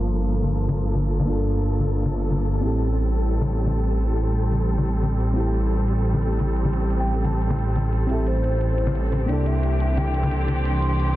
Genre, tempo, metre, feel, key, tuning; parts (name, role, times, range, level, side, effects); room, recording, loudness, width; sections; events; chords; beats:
liquid drum and bass; 176 BPM; 4/4; straight; A4 = 440 Hz
mellow FM electric piano; accompaniment; 0.0-11.2 s; Bb3 to A4; -29 LUFS; left 2 dB; chorus, cassette tape, low-pass filter, digital delay
dark chamber string section; sustained chords; 0.0-11.2 s; E3 to A4; -29 LUFS; right 1 dB; low-pass filter
swelling detuned saw bass; bass; 0.0-11.2 s; G1 to C2; -22 LUFS; equal
electronic hi-hat; drums; 0.1-11.1 s; -56 LUFS; right 2 dB
congas; percussion; 0.4-10.6 s; -27 LUFS; left 2 dB
hollow clarinet-like synth lead; melody; 7.0-11.2 s; C5 to C6; -30 LUFS; left 1 dB; chorus, digital delay
studio ambience; dense, heavily limited modern master, low-pass filter; -20 LUFS; side -15 dB against mid
0.0-11.2 A section
filter sweep on FM electric piano 0.0-11.2; filter sweep on string section 0.0-11.2; filter sweep 0.0-11.2
0.0 Gm9; 2.6 Am7; 9.3 C13
0.26 0.60 0.94 | 1.28 1.62 1.96 2.30 | 2.65 2.99 3.33 3.67 | 4.01 4.35 4.69 5.03 | 5.37 5.71 6.05 6.39 | 6.74 7.08 7.42 7.76 | 8.10 8.44 8.78 9.12 | 9.46 9.80 10.14 10.49 | 10.83